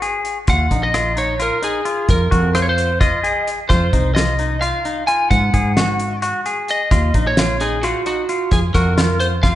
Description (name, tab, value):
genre	progressive instrumental, band music in an uneven meter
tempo	261 BPM (eighths)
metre	7/8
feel	straight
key	unclear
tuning	A4 = 436 Hz
part	clean electric guitar	arpeggios	0.0-9.6 s	Eb4 to Ab4	-22 LUFS	left 2 dB	spring reverb
part	cloth-damped thuddy drum kit	drums	0.0-9.5 s	hi-hat, kick drum, rim click, snare drum	-20 LUFS	equal	none
part	lightly driven lead guitar	melody	0.5-9.6 s	Gb4 to Ab5	-20 LUFS	equal	none
part	woody fretless electric bass	bass	0.5-9.5 s	Bb1 to Ab2	-20 LUFS	equal	none
room	moderate recital hall reverb, RT60 1.4 s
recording	recorded in a church or concert hall, nothing above 11.0 kHz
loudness	-15 LUFS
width	side -13 dB against mid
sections	0.0-9.6 A section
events	none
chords	0.5 Eb5; 2.1 Fm7; 3.7 F5; 5.3 Ebmadd11/Ab (rootless); 6.9 Ebm; 8.5 N.C.